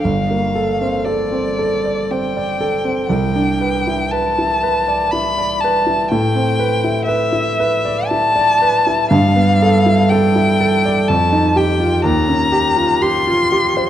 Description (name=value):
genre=classical, impressionist duo for violin and grand piano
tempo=60 BPM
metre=3/4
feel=uneven beats, rubato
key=unclear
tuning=A4 = 439 Hz
part: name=warm violin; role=melody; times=0.0-13.9 s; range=D5 to C6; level=-17 LUFS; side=left 2 dB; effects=none
part: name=warm grand piano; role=accompaniment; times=0.0-13.9 s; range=G1 to D5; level=-16 LUFS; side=right 1 dB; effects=none
room=wet recital hall reverb, RT60 1.8 s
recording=dark, warm production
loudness=-13 LUFS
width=side -11 dB against mid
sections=0.0-13.9 A section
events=none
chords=0.0 Gm11; 3.1 Cmaj9; 6.1 Am11; 9.1 G13; 11.1 F9; 12.1 Eb13